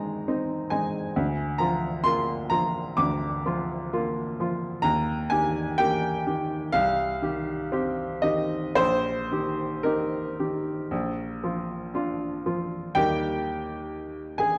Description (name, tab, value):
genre	classical, romantic character piece for solo piano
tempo	55-69 BPM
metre	4/4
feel	rubato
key	Eb major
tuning	A4 = 437 Hz
part	clear upright piano	solo	0.0-14.6 s	Bb1 to D6	-27 LUFS	equal	none
room	wet recital hall reverb, RT60 1.5 s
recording	dark, warm production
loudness	-27 LUFS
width	mono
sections	0.0-13.0 A section; 13.0-14.6 A section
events	none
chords	0.0 Ab/Eb; 1.2 Bb/D; 4.8 Eb; 6.7 Cm; 8.8 Eb/Bb; 10.9 Bb; 13.0 Eb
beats	0.28 | 1.15 2.06 2.99 3.93 | 4.84 5.78 6.75 7.73 | 8.77 9.85 10.91 11.94 | 12.97 13.93